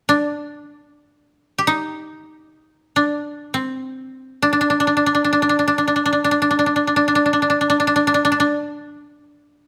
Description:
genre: japanese traditional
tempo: free time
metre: none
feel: none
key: unclear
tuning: A4 = 440 Hz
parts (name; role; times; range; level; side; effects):
- koto; melody; 0.1-9.7 s; C4 to G4; -18 LUFS; equal; none
room: light reverb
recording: close, detailed microphones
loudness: -18 LUFS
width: mono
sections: 0.0-9.7 A section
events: none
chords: none

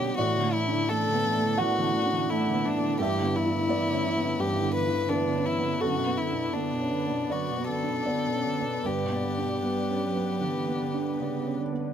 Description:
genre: neoclassical piano and strings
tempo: 76-86 BPM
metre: 4/4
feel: rubato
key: E dorian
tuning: A4 = 439 Hz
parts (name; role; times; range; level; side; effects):
- warm violin; melody; 0.0-11.6 s; D4 to B4; -29 LUFS; left 4 dB; none
- dark cello; second line; 0.0-11.9 s; B2 to G3; -35 LUFS; right 6 dB; none
- felt-muted upright piano; accompaniment; 0.0-11.9 s; F#2 to F#5; -28 LUFS; right 2 dB; none
- glassy FM pad; sustained chords; 0.0-11.9 s; A3 to D5; -35 LUFS; left 1 dB; ensemble chorus, built-in reverb
room: light reverb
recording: none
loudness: -25 LUFS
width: side -8 dB against mid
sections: 0.0-11.9 A section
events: none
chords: 0.2 Asus4; 3.0 Em7/G; 5.8 Bm7/F#; 8.8 G

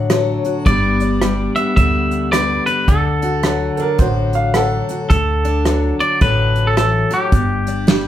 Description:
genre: honky-tonk and classic country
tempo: 108 BPM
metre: 4/4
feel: swing 62% on 8ths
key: unclear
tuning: A4 = 440 Hz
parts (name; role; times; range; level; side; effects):
- picked steel-string acoustic guitar; accompaniment; 0.0-8.1 s; G2 to B4; -20 LUFS; left 3 dB; none
- upright bass; bass; 0.0-8.1 s; G1 to D2; -20 LUFS; equal; none
- soft brush drum kit; drums; 0.1-8.0 s; hi-hat, kick drum, rim click, snare drum; -17 LUFS; right 1 dB; none
- twangy electric guitar; melody; 0.7-8.1 s; G4 to E5; -19 LUFS; equal; none
- bright upright piano; second line; 3.8-5.0 s; A4 to F#5; -20 LUFS; right 2 dB; none
room: moderate studio reverb, RT60 0.7 s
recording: heard from further back in the room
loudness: -14 LUFS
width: side -12 dB against mid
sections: 0.0-8.1 A section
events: none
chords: 0.0 D; 0.7 G; 2.9 D; 7.3 G5

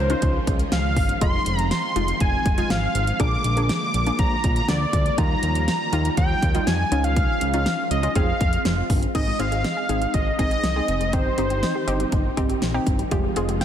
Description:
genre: synth-pop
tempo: 121 BPM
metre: 4/4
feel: straight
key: F minor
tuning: A4 = 440 Hz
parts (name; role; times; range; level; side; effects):
- wide unison lead; melody; 0.0-13.6 s; C5 to D6; -25 LUFS; equal; digital delay
- string machine, violas; sustained chords; 0.0-13.6 s; C3 to F4; -30 LUFS; equal; ensemble chorus
- fat analog bass; bass; 0.0-13.6 s; F1 to F2; -25 LUFS; equal; none
- warbly dusty pluck; accompaniment; 0.1-13.6 s; G3 to Ab4; -29 LUFS; left 1 dB; chorus
- pop drum kit; drums; 0.1-13.6 s; crash cymbal, hi-hat, kick drum, snare drum; -24 LUFS; equal; none
- resonant blip pluck; arpeggios; 9.1-13.6 s; Eb3 to F5; -32 LUFS; equal; phaser, digital delay
room: moderate lush hall reverb, RT60 1.9 s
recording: dense, heavily limited modern master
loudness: -19 LUFS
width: side -9 dB against mid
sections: 0.0-9.1 A section; 9.1-13.6 B section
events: none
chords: 0.0 Dbadd9; 1.2 Fm7; 3.2 Bb7; 5.2 Ebadd9; 6.9 Dbadd9; 8.2 Fm; 9.1 Ab; 11.1 Cm/G; 13.1 Fmadd9

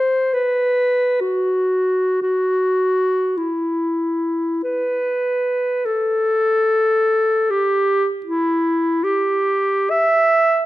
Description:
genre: classical, free, expressive piece for unaccompanied clarinet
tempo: free time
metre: none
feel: none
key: E minor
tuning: A4 = 440 Hz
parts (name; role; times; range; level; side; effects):
- warm clarinet; solo; 0.0-10.7 s; E4 to E5; -16 LUFS; equal; none
room: moderate recital hall reverb, RT60 1.5 s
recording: close, detailed microphones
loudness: -16 LUFS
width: side -15 dB against mid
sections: 0.0-5.8 A section; 5.8-10.7 B section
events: none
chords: none

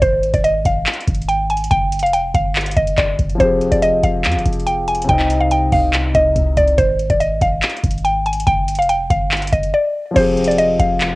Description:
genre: hip hop, trap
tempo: 142 BPM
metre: 4/4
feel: half-time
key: unclear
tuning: A4 = 443 Hz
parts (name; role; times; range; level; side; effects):
- mallet-like synth pluck; melody; 0.0-11.2 s; C5 to Ab5; -16 LUFS; equal; chorus, cassette tape, plate reverb
- warm 808-style bass; bass; 0.0-11.2 s; F1 to F2; -20 LUFS; equal; none
- booming analog drum machine; drums; 0.0-11.1 s; crash cymbal, handclaps, hi-hat, kick drum; -20 LUFS; equal; cassette tape
- dark grand piano; accompaniment; 3.4-6.8, 10.1-11.2 s; C3 to Eb5; -20 LUFS; left 2 dB; cassette tape
room: light reverb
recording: home recording on cassette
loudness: -14 LUFS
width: side -20 dB against mid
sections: 0.0-10.2 A section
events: none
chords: 0.0 Ab5; 1.7 Ebadd9/F (rootless); 3.4 Fmadd9; 5.1 Cm; 6.8 Ab5; 8.5 Ebadd9/F (rootless); 10.2 Fmadd9

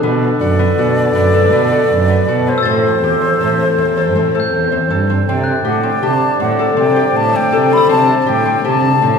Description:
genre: contemporary instrumental, chamber music in an uneven meter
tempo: 160 BPM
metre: 7/4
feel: straight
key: unclear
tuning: A4 = 444 Hz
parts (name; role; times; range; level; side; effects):
- dark clarinet; second line; 0.0-9.2 s; A4 to D5; -19 LUFS; left 2 dB; none
- warm chamber string section; sustained chords; 0.0-9.2 s; D3 to C4; -22 LUFS; left 1 dB; none
- concert harp; arpeggios; 0.0-9.2 s; A3 to A4; -18 LUFS; left 5 dB; none
- dark cello; bass; 0.0-9.2 s; E2 to C3; -17 LUFS; right 4 dB; none
- glockenspiel with hard plastic mallets; texture; 0.0-8.8 s; D6 to A6; -25 LUFS; left 1 dB; none
- wooden flute; melody; 0.4-9.2 s; C5 to B5; -17 LUFS; left 1 dB; none
room: wet recital hall reverb, RT60 1.5 s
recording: recorded in a church or concert hall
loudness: -11 LUFS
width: side -6 dB against mid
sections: 0.0-5.3 A section; 5.3-9.2 B section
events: none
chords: 0.0 Bm7; 2.7 Am; 5.3 D7sus4

